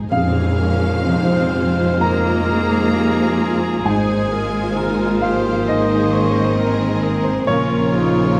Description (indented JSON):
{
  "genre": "cinematic, emotional film score for orchestra",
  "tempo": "66 BPM",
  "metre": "4/4",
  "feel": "rubato",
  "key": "F minor",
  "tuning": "A4 = 440 Hz",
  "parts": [
    { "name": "rich studio violin section", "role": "second line", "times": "0.0-8.4 s", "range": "Eb4 to C5", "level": "-29 LUFS", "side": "equal", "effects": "none" },
    { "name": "dark baby grand piano", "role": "accompaniment", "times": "0.0-8.4 s", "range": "F2 to Bb5", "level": "-26 LUFS", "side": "equal", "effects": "none" },
    { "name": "warm studio viola section", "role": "accompaniment", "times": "0.0-8.4 s", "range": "F3 to F4", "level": "-27 LUFS", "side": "equal", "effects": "none" },
    { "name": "warm studio violin section", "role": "melody", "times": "0.1-8.4 s", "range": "C5 to Bb5", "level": "-32 LUFS", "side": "equal", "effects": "none" },
    { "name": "mellow clarinet", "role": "second line", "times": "0.1-8.4 s", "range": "F4 to C5", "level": "-31 LUFS", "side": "equal", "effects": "none" },
    { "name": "mellow hollow silver concert flute", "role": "second line", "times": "0.1-8.1 s", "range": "Bb5 to F6", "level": "-31 LUFS", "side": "equal", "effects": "none" },
    { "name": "mellow French horn section", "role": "sustained chords", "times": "0.1-8.4 s", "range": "F3 to F4", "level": "-25 LUFS", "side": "equal", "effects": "none" },
    { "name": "rich studio cello section", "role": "bass", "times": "0.1-8.4 s", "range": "C3 to Bb3", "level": "-25 LUFS", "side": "equal", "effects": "none" },
    { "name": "rich studio double bass section", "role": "bass", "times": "0.1-8.4 s", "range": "Ab1 to F2", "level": "-26 LUFS", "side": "equal", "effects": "none" },
    { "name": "tam-tam", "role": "percussion", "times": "0.1-3.8 s", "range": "none", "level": "-30 LUFS", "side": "equal", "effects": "none" },
    { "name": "clear oboe", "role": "second line", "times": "2.0-8.4 s", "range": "F4 to C5", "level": "-31 LUFS", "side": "equal", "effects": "none" }
  ],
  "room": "wet recital hall reverb, RT60 1.5 s",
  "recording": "dark, warm production, vinyl crackle",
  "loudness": "-18 LUFS",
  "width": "mono",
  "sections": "0.1-8.4 A section",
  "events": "band accent 0.1-1.0",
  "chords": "0.1 Fm7; 3.8 Absus2; 7.5 Bbm",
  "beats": "| 0.11 1.05 2.00 2.93 | 3.85 4.76 5.66 6.57 | 7.46 8.38"
}